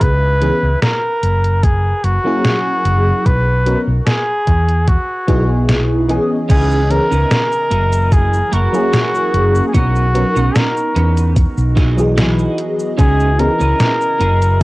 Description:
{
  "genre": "vaporwave",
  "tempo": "74 BPM",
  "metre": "4/4",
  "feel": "straight",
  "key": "C# dorian",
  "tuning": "A4 = 439 Hz",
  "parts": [
    { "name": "warm flugelhorn", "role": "melody", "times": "0.0-14.6 s", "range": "F#4 to B4", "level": "-18 LUFS", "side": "equal", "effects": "cassette tape, tape echo" },
    { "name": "woody fretless electric bass", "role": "bass", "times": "0.0-14.6 s", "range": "F#1 to E2", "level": "-15 LUFS", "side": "equal", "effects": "none" },
    { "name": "detuned 8-bit digital drum machine", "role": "drums", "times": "0.0-14.6 s", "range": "cabasa, crash cymbal, hi-hat, snare drum", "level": "-18 LUFS", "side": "equal", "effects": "overdrive" },
    { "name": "electronic kick drum", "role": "drums", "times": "0.0-14.6 s", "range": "none", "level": "-13 LUFS", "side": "equal", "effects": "none" },
    { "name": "FM electric piano with soft pad layer", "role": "accompaniment", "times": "0.4-13.5 s", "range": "E3 to D#5", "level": "-18 LUFS", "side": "equal", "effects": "phaser, ensemble chorus, cassette tape, analog delay" },
    { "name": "warbly tape-like pad", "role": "sustained chords", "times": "7.1-14.6 s", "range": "C#3 to D#5", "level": "-26 LUFS", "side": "right 1 dB", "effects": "chorus, built-in reverb, phaser, vintage 12-bit sampler grit, cassette tape" },
    { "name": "twelve-string electric guitar", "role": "riff", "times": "6.5-14.6 s", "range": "A#3 to B4", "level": "-24 LUFS", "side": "right 5 dB", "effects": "analog chorus, vintage 12-bit sampler grit, cassette tape, analog delay" }
  ],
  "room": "light reverb",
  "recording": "home recording on cassette",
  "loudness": "-12 LUFS",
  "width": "side -20 dB against mid",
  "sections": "0.0-6.5 A section; 6.5-14.6 B section",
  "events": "none",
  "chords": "0.0 C#7(no3); 1.2 F#9; 3.3 N.C.; 4.9 Emaj9; 6.5 C#m9; 7.7 F#9; 9.7 Bmaj9; 11.4 Emaj9; 13.0 C#m9"
}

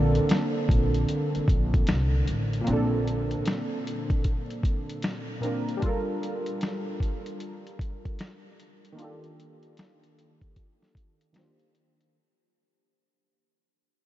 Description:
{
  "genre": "lo-fi hip hop",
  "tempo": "76 BPM",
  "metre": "4/4",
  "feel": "swing 64% on 16ths",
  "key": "Bb major",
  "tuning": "A4 = 441 Hz",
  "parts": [
    { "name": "warm analog keys", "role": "accompaniment", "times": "0.0-12.2 s", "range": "Bb2 to C5", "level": "-29 LUFS", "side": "right 1 dB", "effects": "chorus, cassette tape, low-pass filter" },
    { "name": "upright bass", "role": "bass", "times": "0.0-3.3 s", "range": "A1 to C2", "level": "-26 LUFS", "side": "equal", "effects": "none" },
    { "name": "lo-fi sampler-style drum kit", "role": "drums", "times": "0.1-12.1 s", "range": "finger snaps, hi-hat, kick drum, snare drum", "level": "-29 LUFS", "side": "equal", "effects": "none" }
  ],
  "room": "moderate huge ambient reverb, RT60 7.7 s",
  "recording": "dreamy mix soaked in reverb, vinyl crackle, nothing above 7.9 kHz",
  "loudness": "-25 LUFS",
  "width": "side -14 dB against mid",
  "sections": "0.0-12.1 A section",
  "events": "fade-out 0.0-12.1; filter sweep on synth keys 0.0-12.1",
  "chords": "0.0 Bbmaj7; 5.8 Gm9; 9.0 Ebmaj9#11"
}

